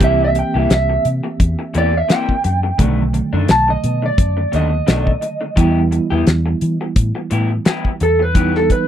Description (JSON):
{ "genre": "straight-eighth soul blues", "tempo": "86 BPM", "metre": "4/4", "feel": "swing 55% on 16ths", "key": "E harmonic minor", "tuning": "A4 = 440 Hz", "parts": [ { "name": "electric guitar through a small old amp", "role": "melody", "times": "0.0-8.9 s", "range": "A4 to A5", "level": "-18 LUFS", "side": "right 1 dB", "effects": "vibrato effect" }, { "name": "mellow reed electric piano", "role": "accompaniment", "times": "0.0-8.9 s", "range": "D3 to G4", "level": "-22 LUFS", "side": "right 4 dB", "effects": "fast tremolo" }, { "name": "electric guitar through a small old amp", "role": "stabs", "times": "0.0-8.7 s", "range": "B2 to G4", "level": "-23 LUFS", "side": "left 6 dB", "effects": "lush chorus" }, { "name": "vintage muted fingered electric bass", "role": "bass", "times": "0.0-8.7 s", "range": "B1 to E3", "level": "-18 LUFS", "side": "left 1 dB", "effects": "none" }, { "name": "damped 70s drum kit", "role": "drums", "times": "0.0-8.9 s", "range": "hi-hat, kick drum, snare drum", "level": "-15 LUFS", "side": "left 1 dB", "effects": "none" } ], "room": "little or no reverb", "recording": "dry, close 1970s-style studio recording", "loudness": "-14 LUFS", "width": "side -10 dB against mid", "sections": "0.0-8.9 A section", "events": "none", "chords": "0.0 C7; 2.8 B7#9; 5.6 Em", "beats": "| 0.01 0.71 1.40 2.10 | 2.79 3.49 4.18 4.88 | 5.58 6.27 6.96 7.66 | 8.35" }